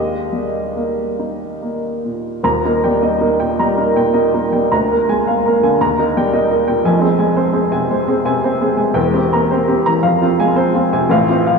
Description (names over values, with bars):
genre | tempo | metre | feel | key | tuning
classical, romantic character piece for solo piano | 46-58 BPM (dotted quarters) | 6/8 | rubato | Eb major | A4 = 440 Hz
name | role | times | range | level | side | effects
warm upright piano | solo | 0.0-11.6 s | Eb1 to Bb5 | -13 LUFS | equal | none
room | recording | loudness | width
wet cathedral reverb, RT60 5.7 s | in a vast, echoing space, small room ambience | -13 LUFS | side -4 dB against mid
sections
0.0-2.4 A section; 2.4-11.6 B section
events
none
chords
0.0 Eb; 4.7 Bb7/D; 5.8 Eb; 6.8 Fm; 9.0 C7/E; 10.0 Fm